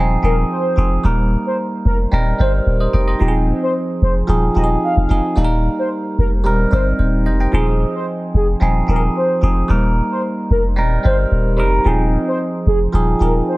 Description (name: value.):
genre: afrobeats.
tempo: 111 BPM.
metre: 4/4.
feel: straight.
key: unclear.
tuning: A4 = 440 Hz.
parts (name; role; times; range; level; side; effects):
bell-like tine electric piano; accompaniment; 0.0-13.6 s; F3 to G5; -19 LUFS; right 1 dB; phaser.
punchy sub bass; bass; 0.0-13.4 s; Eb1 to G1; -16 LUFS; equal; none.
warm velvety synth lead; melody; 0.2-13.6 s; Ab4 to F5; -23 LUFS; equal; chorus, digital delay.
room: digital ambience.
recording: none.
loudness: -14 LUFS.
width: side -20 dB against mid.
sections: 0.0-13.6 A section.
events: none.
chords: 0.0 Ab6/Eb; 1.0 Eb; 2.1 Cm7/Eb; 3.2 Ab6/Eb; 4.3 Fm7/Eb; 5.4 Eb; 6.5 Cm7/Eb; 7.5 Ab6/Eb; 9.7 Eb; 10.8 Cm7/Eb; 11.9 Ab6/Eb.